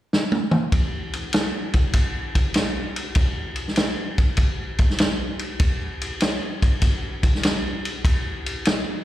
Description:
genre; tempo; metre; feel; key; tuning
rock; 98 BPM; 4/4; swing 68% on 8ths; none; none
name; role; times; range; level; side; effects
vintage drum kit; drums; 0.1-8.9 s; kick drum, ride cymbal, snare drum, toms; -20 LUFS; equal; none
room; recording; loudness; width
light reverb; live gig heard through the venue's PA, recital hall reverb; -20 LUFS; side -14 dB against mid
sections
0.7-9.0 A section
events
drum fill 0.1-0.7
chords
none

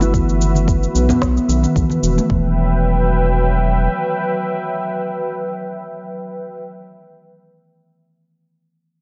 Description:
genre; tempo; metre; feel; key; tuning
organic downtempo; 111 BPM; 4/4; swing 54% on 16ths; E harmonic minor; A4 = 441 Hz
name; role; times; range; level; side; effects
warm analog pad; sustained chords; 0.0-6.6 s; F#3 to G5; -24 LUFS; equal; subtle chorus, sidechain pumping
steel tongue drum; arpeggios; 0.0-2.5 s; D#3 to E4; -23 LUFS; equal; low-pass filter, delay
round analog bass; bass; 0.0-3.9 s; E1 to B1; -20 LUFS; equal; sidechain pumping
electronic cabasa and snare drum; drums; 0.0-2.3 s; none; -31 LUFS; equal; none
bongos and congas; percussion; 0.0-2.3 s; none; -28 LUFS; equal; none
electronic kick drum; drums; 0.1-2.4 s; none; -22 LUFS; equal; none
room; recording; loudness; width
light reverb, digital ambience; nothing above 7.4 kHz; -17 LUFS; mono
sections
0.0-2.3 A section; 2.3-6.6 B section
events
filter sweep on steel tongue drum 0.0-2.3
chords
0.0 Emadd9

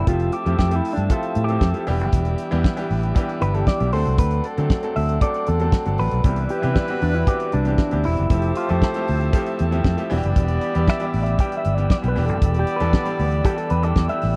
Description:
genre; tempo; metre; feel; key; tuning
disco; 117 BPM; 4/4; straight; E minor; A4 = 440 Hz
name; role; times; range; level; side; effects
clear baby grand piano; accompaniment; 0.0-14.4 s; E3 to A4; -29 LUFS; equal; none
electric guitar with an envelope filter; accompaniment; 0.0-14.4 s; D4 to G5; -28 LUFS; equal; none
tonewheel organ; sustained chords; 0.0-14.4 s; G4 to E6; -34 LUFS; equal; stopped rotary speaker
fingered electric bass; bass; 0.0-14.3 s; E1 to D3; -23 LUFS; equal; none
damped 70s drum kit; drums; 0.1-14.3 s; hi-hat, kick drum, snare drum; -21 LUFS; equal; none
clear horn section; stabs; 6.2-14.2 s; G3 to D5; -30 LUFS; equal; none
room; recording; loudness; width
little or no reverb; dry, close 1970s-style studio recording; -21 LUFS; mono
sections
0.0-14.4 A section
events
clean electric guitar solo 0.0-14.4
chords
0.1 Fmaj9; 1.9 Em7; 3.9 D7; 6.2 Cmaj9; 8.3 Fmaj9; 10.1 Em7

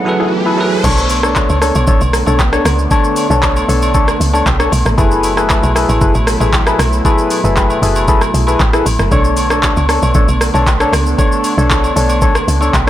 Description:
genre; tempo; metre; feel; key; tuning
amapiano; 116 BPM; 4/4; straight; unclear; A4 = 439 Hz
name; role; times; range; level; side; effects
bell-like tine electric piano; accompaniment; 0.0-0.9 s; F#3 to C#5; -16 LUFS; right 4 dB; fast stereo tremolo
warm analog pad; sustained chords; 0.0-12.9 s; B2 to G#5; -22 LUFS; right 1 dB; chorus
riser; sound effects; 0.0-0.8 s; none; -21 LUFS; equal; none
percussive organ stab; stabs; 0.2-12.9 s; D4 to C#5; -16 LUFS; left 3 dB; chorus, tape echo
woody log drum bass; bass; 0.8-12.9 s; F#1 to C#2; -15 LUFS; equal; none
smooth R&B drum kit; drums; 0.8-12.9 s; crash cymbal, handclaps, hi-hat, kick drum, rim click, shaker; -15 LUFS; equal; none
agogo bells and woodblock; percussion; 0.8-12.9 s; none; -22 LUFS; right 3 dB; none
room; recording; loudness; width
light reverb, digital ambience; blown-out, overdriven recording, overdrive; -10 LUFS; side -12 dB against mid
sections
0.8-12.9 A section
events
break 0.0-0.8; riser 0.0-0.8; drop 0.8-12.9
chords
0.0 F#m11; 0.8 Bm9; 5.0 F#m11; 9.1 Bm9

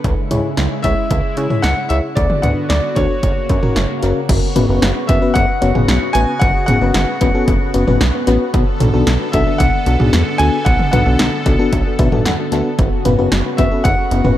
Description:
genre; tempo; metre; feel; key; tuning
synth-pop; 113 BPM; 4/4; straight; unclear; A4 = 440 Hz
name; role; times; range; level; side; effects
phased analog pad; sustained chords; 0.0-14.4 s; C#3 to A4; -24 LUFS; equal; phaser, chorus, shimmer reverb
chorused synth bass; bass; 0.0-14.4 s; F#1 to C#3; -17 LUFS; equal; none
punchy analog drum machine; drums; 0.0-14.4 s; cowbell, crash cymbal, hi-hat, kick drum, snare drum, toms; -17 LUFS; right 1 dB; none
FM electric piano with tremolo; accompaniment; 0.3-14.4 s; B3 to A5; -19 LUFS; left 4 dB; dub echo, shimmer reverb
clear concert grand piano; melody; 0.8-14.4 s; C#5 to G#5; -21 LUFS; equal; dub echo, shimmer reverb
room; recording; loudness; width
light reverb; echo-heavy mix; -13 LUFS; side -12 dB against mid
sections
0.0-4.3 A section; 4.3-14.4 B section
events
FM electric piano fill 11.7-12.8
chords
0.0 C#m; 2.2 D6; 3.2 F#; 4.3 F#sus4; 8.5 Bm7; 12.8 F#sus4

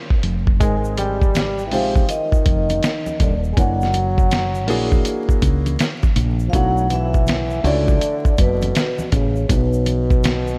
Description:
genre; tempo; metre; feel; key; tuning
hip hop, jazz-hop; 81 BPM; 4/4; swing 64% on 16ths; unclear; A4 = 441 Hz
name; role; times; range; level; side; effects
lo-fi sampler-style drum kit; drums; 0.1-10.5 s; hi-hat, kick drum, snare drum; -21 LUFS; equal; none
woody fretless electric bass; bass; 0.2-10.6 s; D#1 to C#2; -23 LUFS; equal; none
vibraphone with soft mallets; melody; 0.6-10.6 s; B4 to G#5; -27 LUFS; equal; diffuse ambient delay
warm trombone; second line; 0.6-10.6 s; B2 to G#3; -28 LUFS; equal; none
warm upright piano; accompaniment; 0.6-7.9 s; G#3 to C#5; -28 LUFS; equal; none
egg shaker and congas; percussion; 0.6-10.6 s; none; -35 LUFS; equal; none
room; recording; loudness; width
light reverb, small room ambience; vinyl crackle; -18 LUFS; mono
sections
0.0-10.6 A section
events
none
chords
0.0 N.C.; 0.6 G#maj9; 3.6 F#7b13; 6.5 Bm11

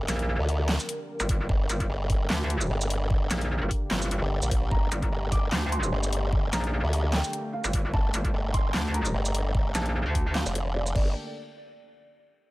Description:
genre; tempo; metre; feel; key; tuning
heavy wobble dubstep; 149 BPM; 4/4; swing 54% on 16ths, half-time; G minor; A4 = 440 Hz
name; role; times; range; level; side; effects
dark studio string section; sustained chords; 0.0-11.1 s; D3 to Bb4; -37 LUFS; left 1 dB; sidechain pumping, low-pass filter
formant-sweep wobble bass; bass; 0.0-11.1 s; F1 to D2; -27 LUFS; equal; chorus, overdrive
metallic wobble bass; bass; 0.1-10.4 s; G1 to D2; -27 LUFS; equal; distortion, chorus, overdrive
dubstep drum kit; drums; 0.1-11.0 s; crash cymbal, handclaps, hi-hat, shaker, snare drum; -32 LUFS; equal; overdrive
electronic kick drum; drums; 1.3-11.0 s; none; -26 LUFS; equal; overdrive
felt-muted upright piano; melody; 4.7-11.1 s; D5 to D6; -36 LUFS; right 1 dB; tape echo
room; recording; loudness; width
little or no reverb; none; -24 LUFS; side -19 dB against mid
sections
0.0-11.2 A section; 11.2-12.5 B section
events
drop 0.0-11.2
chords
0.0 Gmadd9; 11.2 N.C.

